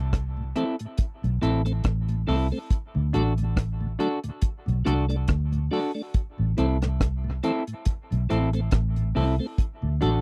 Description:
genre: dub reggae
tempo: 70 BPM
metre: 4/4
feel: swing 56% on 16ths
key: A dorian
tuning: A4 = 440 Hz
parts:
  - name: vintage muted fingered electric bass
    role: bass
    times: 0.0-10.2 s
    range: A1 to D2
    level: -27 LUFS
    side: equal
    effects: none
  - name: deep reggae drum kit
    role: drums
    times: 0.1-10.2 s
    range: hi-hat, kick drum, rim click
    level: -27 LUFS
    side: equal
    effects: none
  - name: tonewheel organ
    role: accompaniment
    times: 0.4-10.1 s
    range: D2 to D4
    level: -33 LUFS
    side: equal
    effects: slow rotary speaker
  - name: semi-hollow electric guitar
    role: accompaniment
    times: 0.6-10.2 s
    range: C4 to A4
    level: -32 LUFS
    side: equal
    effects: dub echo
room: little or no reverb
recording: dry, close 1970s-style studio recording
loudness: -26 LUFS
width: mono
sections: 0.0-10.2 A section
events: none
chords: 0.0 Am; 2.7 D; 6.1 Am; 9.6 D

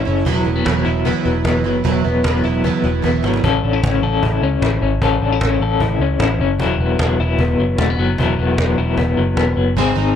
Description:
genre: jangly indie pop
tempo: 152 BPM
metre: 4/4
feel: straight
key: E major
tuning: A4 = 436 Hz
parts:
  - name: picked plugged-in twelve-string acoustic guitar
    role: accompaniment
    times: 0.0-3.4, 9.8-10.2 s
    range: G#2 to E4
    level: -21 LUFS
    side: right 12 dB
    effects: wide subtle chorus
  - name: electric guitar through a small old amp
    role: arpeggios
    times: 0.0-10.2 s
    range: F#3 to A4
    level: -18 LUFS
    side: left 5 dB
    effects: tremolo, analog delay
  - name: vintage muted picked electric bass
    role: bass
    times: 0.0-10.1 s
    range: E1 to C#2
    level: -19 LUFS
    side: equal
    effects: none
  - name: cajon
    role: drums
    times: 0.3-9.9 s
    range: none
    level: -23 LUFS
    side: right 1 dB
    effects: none
room: light reverb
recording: dark, warm production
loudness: -15 LUFS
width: side -9 dB against mid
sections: 0.0-3.4 A section; 3.4-10.2 B section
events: drum fill 3.0-3.4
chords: 0.3 Esus2; 3.4 A; 6.6 Esus2

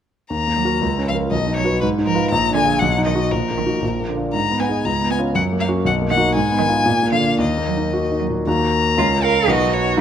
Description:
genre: quick classical-period movement for piano trio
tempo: 118 BPM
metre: 2/4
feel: rubato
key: Eb minor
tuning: A4 = 439 Hz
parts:
  - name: rich violin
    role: melody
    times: 0.3-10.0 s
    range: Bb4 to Bb5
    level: -21 LUFS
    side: left 5 dB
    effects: none
  - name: warm concert grand piano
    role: accompaniment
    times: 0.3-10.0 s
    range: Bb1 to B4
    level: -18 LUFS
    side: equal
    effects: none
  - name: clear cello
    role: second line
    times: 0.6-10.0 s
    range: D3 to Bb4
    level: -24 LUFS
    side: right 9 dB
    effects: none
room: moderate recital hall reverb, RT60 1.4 s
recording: close, detailed microphones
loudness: -16 LUFS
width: side -9 dB against mid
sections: 0.3-8.5 A section; 8.5-10.0 A section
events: none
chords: 0.3 Ebm; 0.8 Bbm/Db; 1.3 B; 1.8 Fm7b5/Ab; 2.3 Bb7; 2.8 B; 3.3 Ebm/Bb; 3.8 Bb; 4.3 Abm; 4.9 Db7; 5.4 Gb; 5.8 Bmaj7; 6.3 Fm7b5/Ab; 6.9 Bb7; 7.4 Ebm; 9.0 Bbm/Db; 9.5 B

